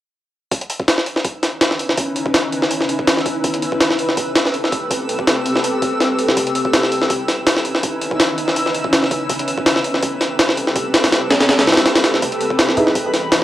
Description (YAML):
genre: drum and bass, jungle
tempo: 164 BPM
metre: 4/4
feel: swing 54% on 16ths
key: C# minor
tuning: A4 = 440 Hz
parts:
  - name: granular cloud pad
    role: sustained chords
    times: 1.5-13.4 s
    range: E3 to D#5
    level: -21 LUFS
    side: equal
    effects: built-in reverb
  - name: jungle sampler-style drum kit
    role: drums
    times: 0.5-13.4 s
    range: hi-hat, kick drum, snare drum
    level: -16 LUFS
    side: equal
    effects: high-pass filter on hats, small room ambience, high-pass filter on kick, high-pass filter on snare
  - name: twinkling granular texture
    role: texture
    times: 1.7-13.4 s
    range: B5 to E6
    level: -28 LUFS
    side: left 2 dB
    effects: built-in reverb
  - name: dark concert grand piano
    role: stabs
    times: 12.8-12.9 s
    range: D#4 to B4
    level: -18 LUFS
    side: right 1 dB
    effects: dub echo
room: light reverb, digital ambience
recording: dry, gritty hardware recording, cassette tape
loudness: -15 LUFS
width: side -13 dB against mid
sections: 0.5-13.4 A section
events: none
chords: 0.5 C#m9; 3.4 Am9; 6.4 C#m9; 9.3 Am9; 12.2 C#m9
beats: | 0.52 0.88 1.25 1.61 | 1.98 2.35 2.71 3.08 | 3.44 3.81 4.17 4.54 | 4.91 5.27 5.64 6.00 | 6.37 6.74 7.10 7.47 | 7.83 8.20 8.56 8.93 | 9.30 9.66 10.03 10.39 | 10.76 11.13 11.49 11.86 | 12.22 12.59 12.96 13.32